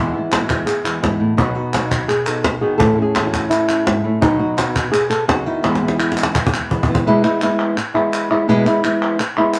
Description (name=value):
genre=flamenco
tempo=169 BPM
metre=4/4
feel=straight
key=E major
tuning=A4 = 440 Hz
part: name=flamenco guitar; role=melody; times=0.0-9.6 s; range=E2 to A4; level=-20 LUFS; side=equal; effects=none
part: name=flamenco guitar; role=stabs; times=0.0-7.1 s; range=E2 to F#4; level=-26 LUFS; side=equal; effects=none
part: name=cajon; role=percussion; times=0.1-7.0 s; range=none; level=-22 LUFS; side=equal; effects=none
part: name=palmas hand claps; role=percussion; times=0.3-9.6 s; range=none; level=-26 LUFS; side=equal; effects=none
room=moderate studio reverb, RT60 0.7 s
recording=none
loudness=-17 LUFS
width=mono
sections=0.0-7.1 A section; 7.1-9.6 B section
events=drum fill 5.6-7.1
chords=0.0 E; 1.4 B; 2.8 A; 4.2 B; 5.6 E